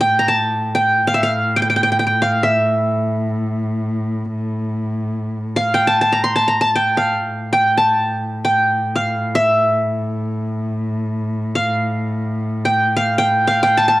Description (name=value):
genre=Turkish makam ensemble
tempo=free time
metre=none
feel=none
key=unclear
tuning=A4 = 440 Hz
part: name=qanun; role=melody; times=0.0-14.0 s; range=E5 to C6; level=-15 LUFS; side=equal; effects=cassette tape
part: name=muted cello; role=drone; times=0.0-14.0 s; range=A2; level=-22 LUFS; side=equal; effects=stereo widening, cassette tape
room=moderate spring reverb, RT60 1.8 s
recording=home recording on cassette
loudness=-15 LUFS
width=side -17 dB against mid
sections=0.0-14.0 A section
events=none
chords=none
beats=free time